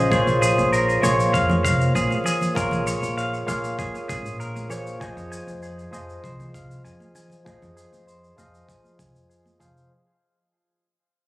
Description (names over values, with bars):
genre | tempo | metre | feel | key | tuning
sunset chillout | 98 BPM | 4/4 | straight | unclear | A4 = 439 Hz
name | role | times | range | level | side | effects
barky tine electric piano | accompaniment | 0.0-9.9 s | Db3 to C6 | -24 LUFS | equal | overdrive, auto-pan, vintage 12-bit sampler grit, ping-pong delay
clean electric guitar | arpeggios | 0.0-9.9 s | Ab4 to Ab5 | -26 LUFS | equal | low-pass filter, ping-pong delay
upright bass | bass | 0.0-9.8 s | F1 to F2 | -27 LUFS | equal | tube saturation
cabasa | drums | 0.1-9.9 s | none | -36 LUFS | equal | none
electronic kick drum | drums | 0.1-9.7 s | none | -29 LUFS | equal | none
congas | percussion | 0.1-9.7 s | none | -30 LUFS | equal | none
room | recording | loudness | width
moderate plate reverb, RT60 2.1 s | recorded on a phone in the room, studio reverb, compression | -19 LUFS | side -18 dB against mid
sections
0.0-9.9 A section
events
fade-out 0.0-9.9; filter sweep on clean electric guitar 0.0-9.9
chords
0.1 Bbm9; 5.0 Fm7